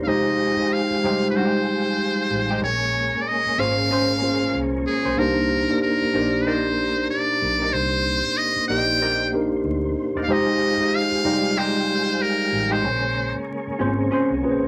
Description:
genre	R&B, neo-soul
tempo	94 BPM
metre	4/4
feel	swing 59% on 16ths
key	C phrygian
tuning	A4 = 440 Hz
part	trumpet with metal mute	melody	0.0-13.3 s	Ab4 to G5	-25 LUFS	equal	none
part	mellow tine electric piano	accompaniment	0.0-14.7 s	G3 to Eb5	-25 LUFS	equal	none
part	tonewheel organ	sustained chords	0.0-14.7 s	Bb2 to G4	-34 LUFS	equal	chorus vibrato, fast rotary speaker
part	vintage muted fingered electric bass	bass	0.0-14.7 s	E1 to D2	-33 LUFS	equal	none
part	hollow-body jazz guitar	second line	1.0-14.3 s	Ab3 to D5	-29 LUFS	equal	none
room	moderate small room reverb, RT60 0.6 s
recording	vinyl crackle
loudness	-22 LUFS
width	mono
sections	0.0-14.7 A section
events	none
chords	0.1 Fm9; 2.6 Bbm9; 5.2 Cm9; 10.3 Fm9; 12.8 Bbm9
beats	| 0.06 0.70 1.34 1.98 | 2.62 3.26 3.89 4.53 | 5.17 5.81 6.45 7.09 | 7.72 8.36 9.00 9.64 | 10.28 10.92 11.55 12.19 | 12.83 13.47 14.11

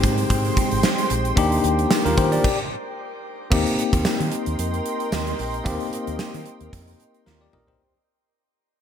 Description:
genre	1980s-style pop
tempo	112 BPM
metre	4/4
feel	swing 55% on 16ths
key	Eb major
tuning	A4 = 440 Hz
part	bell-like tine electric piano	accompaniment	0.0-7.9 s	Ab3 to Eb5	-24 LUFS	left 4 dB	medium stereo tremolo, shimmer reverb
part	glassy FM pad	sustained chords	0.0-7.8 s	Ab3 to D6	-29 LUFS	right 2 dB	ensemble chorus, built-in reverb, shimmer reverb
part	vintage muted fingered electric bass	bass	0.0-7.7 s	Ab1 to Eb3	-26 LUFS	right 1 dB	none
part	gated 80s drum kit	drums	0.0-7.8 s	crash cymbal, hi-hat, kick drum, snare drum, tambourine, toms	-22 LUFS	right 1 dB	gated reverb
room	light reverb, studio reverb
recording	none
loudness	-19 LUFS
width	side -8 dB against mid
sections	0.0-3.5 A section; 3.5-7.8 B section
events	stop 2.4-3.5; fade-out 3.5-7.8; drum fill 7.3-7.8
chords	0.0 Abmaj7; 1.4 Ebmaj7; 3.5 Eb6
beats	0.30 0.84 | 1.38 1.91 2.45 2.98 | 3.52 4.05 4.59 5.12 | 5.66 6.20 6.73 7.27

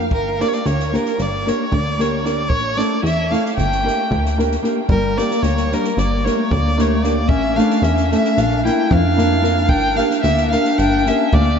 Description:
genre	balkan folk, Balkan wedding band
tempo	225 BPM (eighths)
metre	9/8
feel	straight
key	G dorian sharp4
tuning	A4 = 440 Hz
part	rich violin	melody	0.0-11.6 s	Bb4 to G5	-21 LUFS	equal	none
part	nylon-string guitar	accompaniment	0.0-11.3 s	A3 to Bb4	-21 LUFS	right 1 dB	none
part	plucky analog bass	bass	0.0-11.6 s	G1 to F2	-20 LUFS	equal	none
part	compact cocktail drum kit	percussion	0.1-11.5 s	kick drum, snare drum	-24 LUFS	equal	none
part	mellow clarinet	second line	4.9-11.6 s	G3 to E4	-20 LUFS	left 3 dB	none
room	wet huge ambient reverb, RT60 8.0 s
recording	in a vast, echoing space, nothing above 7.8 kHz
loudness	-15 LUFS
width	side -7 dB against mid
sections	0.0-4.9 A section; 4.9-11.6 A section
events	none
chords	0.1 Gm; 2.5 A; 3.6 Gm; 7.3 A; 8.4 Bb; 9.7 Gm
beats	| 0.11 0.38 0.64 0.91 1.17 1.44 1.70 1.97 2.23 | 2.50 2.76 3.03 3.29 3.56 3.82 4.09 4.36 4.62 | 4.89 5.15 5.42 5.69 5.95 6.22 6.49 6.75 7.02 | 7.29 7.55 7.82 8.09 8.36 8.62 8.89 9.16 9.43 | 9.69 9.96 10.23 10.50 10.77 11.03 11.30 11.57

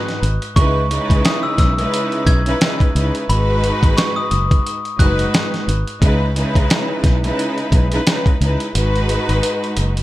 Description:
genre	hip hop, boom-bap hip-hop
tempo	88 BPM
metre	4/4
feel	swing 58% on 16ths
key	C# minor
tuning	A4 = 440 Hz
part	glockenspiel with hard plastic mallets	melody	0.0-6.0 s	B5 to G#6	-23 LUFS	equal	tape echo
part	rich studio string section	accompaniment	0.0-10.0 s	G#2 to B4	-20 LUFS	equal	none
part	dusty soul sampler-style drum kit	drums	0.1-10.0 s	hi-hat, kick drum, snare drum	-17 LUFS	equal	none
part	fingered electric bass	bass	0.2-10.0 s	F#1 to C#2	-18 LUFS	equal	none
room	light reverb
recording	none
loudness	-14 LUFS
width	side -16 dB against mid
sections	0.0-10.0 A section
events	drum fill 8.7-10.0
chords	0.0 G#m7; 0.6 C#m7; 3.3 G#m7; 6.0 C#m7; 8.7 G#m7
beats	| 0.56 1.25 1.93 2.61 | 3.29 3.97 4.66 5.34 | 6.02 6.70 7.38 8.06 | 8.75 9.43

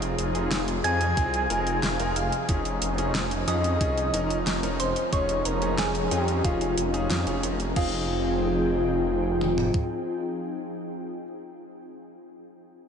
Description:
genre	synthwave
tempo	91 BPM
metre	4/4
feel	straight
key	F minor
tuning	A4 = 440 Hz
part	lush unison pad	sustained chords	0.0-11.2 s	C3 to G5	-31 LUFS	equal	chorus, phaser, sidechain pumping
part	bright concert grand piano	stabs	0.0-11.2 s	C4 to Bb4	-34 LUFS	left 1 dB	diffuse ambient delay
part	wide detuned saw bass	bass	0.0-9.7 s	F1 to F2	-29 LUFS	equal	chorus
part	pop drum kit	drums	0.0-7.9 s	crash cymbal, hi-hat, snare drum	-32 LUFS	equal	small room ambience
part	soft octave-layered synth lead	melody	0.8-11.2 s	F4 to Ab5	-30 LUFS	left 1 dB	chorus, tremolo, ping-pong delay
part	soft synth bell	second line	0.8-11.2 s	F5 to Ab6	-34 LUFS	right 2 dB	chorus, phaser, diffuse ambient delay
part	gated 80s digital drum machine	drums	1.2-9.9 s	kick drum, toms	-27 LUFS	equal	gated reverb, overdrive, small room ambience
room	wet huge ambient reverb, RT60 7.6 s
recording	dreamy mix soaked in reverb, nothing above 10.6 kHz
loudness	-23 LUFS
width	side -7 dB against mid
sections	0.0-7.8 A section; 7.8-10.4 B section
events	none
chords	0.0 Fm7; 2.5 Dbadd9/F; 7.8 Fm7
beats	0.51 1.17 1.83 | 2.49 3.15 3.81 4.47 | 5.13 5.79 6.45 7.11 | 7.76 8.43 9.08 9.74

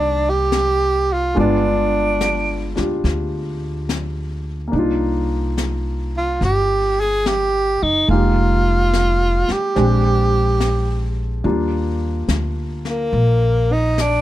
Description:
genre	jazz ballad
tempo	71 BPM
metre	4/4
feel	swing 68% on 8ths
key	Eb major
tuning	A4 = 440 Hz
part	breathy tenor saxophone	melody	0.0-14.2 s	Bb3 to Ab4	-18 LUFS	right 1 dB	none
part	warm grand piano	accompaniment	0.0-14.2 s	Eb3 to G4	-23 LUFS	equal	none
part	upright bass	bass	0.0-14.2 s	F1 to Eb2	-20 LUFS	equal	none
part	jazz brush drum kit	drums	0.5-14.2 s	brushed snare drum, hi-hat, snare drum	-28 LUFS	left 5 dB	none
room	little or no reverb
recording	close, detailed microphones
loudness	-16 LUFS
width	side -14 dB against mid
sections	0.0-14.2 A section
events	none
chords	0.0 Abmaj9 (rootless); 1.4 G7b9; 4.7 Cm11; 8.1 Fm11; 9.8 Bb13; 11.4 Ebmaj9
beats	0.52 | 1.36 2.20 3.04 3.88 | 4.72 5.57 6.41 7.25 | 8.09 8.93 9.77 10.61 | 11.45 12.28 13.12 13.96

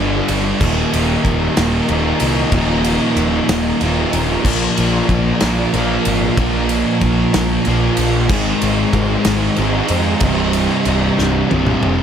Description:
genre	quiet-loud alternative rock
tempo	62 BPM (dotted quarters)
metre	6/8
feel	straight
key	unclear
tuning	A4 = 440 Hz
part	dark chamber string section	sustained chords	0.0-12.0 s	F3 to Eb5	-27 LUFS	left 1 dB	none
part	fuzz guitar	riff	0.0-12.0 s	C2 to Bb3	-22 LUFS	left 1 dB	distortion
part	thick fuzz guitar	riff	0.0-12.0 s	C2 to Bb3	-21 LUFS	left 9 dB	distortion
part	thick fuzz guitar	riff	0.0-12.0 s	C2 to Bb3	-20 LUFS	right 8 dB	distortion
part	fuzz picked electric bass	bass	0.0-12.0 s	C1 to F2	-20 LUFS	equal	overdrive
part	loose indie drum kit	drums	0.3-12.0 s	crash cymbal, kick drum, ride cymbal, snare drum, toms	-20 LUFS	equal	none
room	light reverb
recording	none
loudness	-14 LUFS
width	side -8 dB against mid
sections	0.0-12.0 A section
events	drum fill 11.2-12.0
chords	0.0 G; 0.6 Ebsus2; 4.5 Bb; 8.3 Ab; 10.2 Cm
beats	| 0.61 1.57 | 2.53 3.49 | 4.45 5.41 | 6.37 7.33 | 8.30 9.26 | 10.22 11.19

